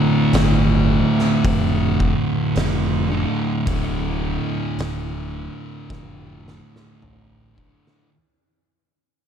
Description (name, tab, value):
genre	stoner and doom metal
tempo	54 BPM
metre	4/4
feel	straight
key	D minor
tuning	A4 = 441 Hz
part	thick fuzz guitar	riff	0.0-8.1 s	D2 to D3	-23 LUFS	left 7 dB	distortion
part	thick fuzz guitar	riff	0.0-8.1 s	D2 to D3	-22 LUFS	right 8 dB	distortion
part	growling picked electric bass	bass	0.3-7.7 s	D1 to A1	-23 LUFS	equal	overdrive, tube saturation
part	oversized low-tuned drum kit	drums	0.3-8.1 s	hi-hat, kick drum, snare drum, toms	-26 LUFS	equal	none
room	light reverb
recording	dark, warm production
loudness	-17 LUFS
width	side -8 dB against mid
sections	0.0-8.1 A section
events	fade-out 0.0-8.1; drum fill 5.9-8.1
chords	0.0 Dm